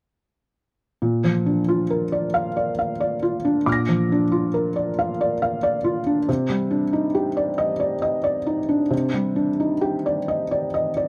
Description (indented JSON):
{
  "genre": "neoclassical minimalist piano",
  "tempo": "45 BPM (dotted quarters)",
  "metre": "6/8",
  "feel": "rubato",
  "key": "Bb major",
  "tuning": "A4 = 440 Hz",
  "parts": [
    { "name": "felt-muted upright piano", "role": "solo", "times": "1.0-11.1 s", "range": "Bb2 to Bb6", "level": "-22 LUFS", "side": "equal", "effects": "none" }
  ],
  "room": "little or no reverb",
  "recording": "close, detailed microphones",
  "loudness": "-22 LUFS",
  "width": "mono",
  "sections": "1.0-11.1 A section",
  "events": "none",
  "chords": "1.0 Bb; 6.3 Cmadd9",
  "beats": "| 1.02 2.35 | 3.67 4.98 | 6.28 7.59 | 8.92 10.27"
}